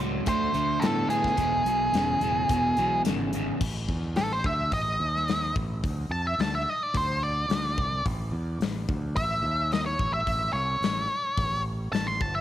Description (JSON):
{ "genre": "blues rock power trio and southern rock", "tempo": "108 BPM", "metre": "4/4", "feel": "straight", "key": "unclear", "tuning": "A4 = 440 Hz", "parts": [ { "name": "crunchy overdriven guitar", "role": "riff", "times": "0.0-3.6 s", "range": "E2 to B3", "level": "-28 LUFS", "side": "right 1 dB", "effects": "none" }, { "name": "growling fingered electric bass", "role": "bass", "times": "0.0-12.4 s", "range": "E1 to A2", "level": "-31 LUFS", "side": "right 1 dB", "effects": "overdrive" }, { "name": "octave-fuzz lead guitar", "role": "melody", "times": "0.3-12.4 s", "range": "G#4 to C6", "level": "-27 LUFS", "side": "equal", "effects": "distortion" }, { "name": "big rock drum kit", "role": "drums", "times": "0.3-12.3 s", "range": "crash cymbal, hi-hat, kick drum, snare drum", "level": "-31 LUFS", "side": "left 3 dB", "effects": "none" } ], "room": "light reverb, small room ambience", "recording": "1960s-style stereo", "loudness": "-24 LUFS", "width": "side -12 dB against mid", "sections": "0.0-3.6 A section; 3.6-12.4 B section", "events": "lead electric guitar solo 3.6-12.4", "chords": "0.3 D5; 1.4 E; 3.6 A5; 5.0 N.C.; 8.1 A5; 9.4 C#madd9/D#; 10.0 A" }